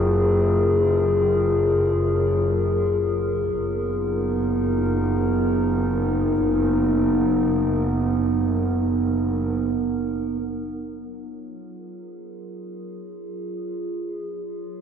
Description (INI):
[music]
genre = ambient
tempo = free time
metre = none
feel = none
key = F# major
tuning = A4 = 436 Hz
[part]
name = warbly tape-like pad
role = sustained chords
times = 0.0-14.8 s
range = F#3 to A#4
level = -22 LUFS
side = equal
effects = chorus, built-in reverb
[part]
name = bright studio double bass section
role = bass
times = 0.0-10.4 s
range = F#1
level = -25 LUFS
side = equal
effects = none
[sound]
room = wet cathedral reverb, RT60 5.4 s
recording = in a vast, echoing space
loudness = -20 LUFS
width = side -7 dB against mid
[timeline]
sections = 0.0-10.4 A section; 10.4-14.8 B section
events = filter sweep on ambient pad 10.4-14.8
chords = 0.0 F#maj9; 3.5 Bmaj7/F#; 10.4 F#maj9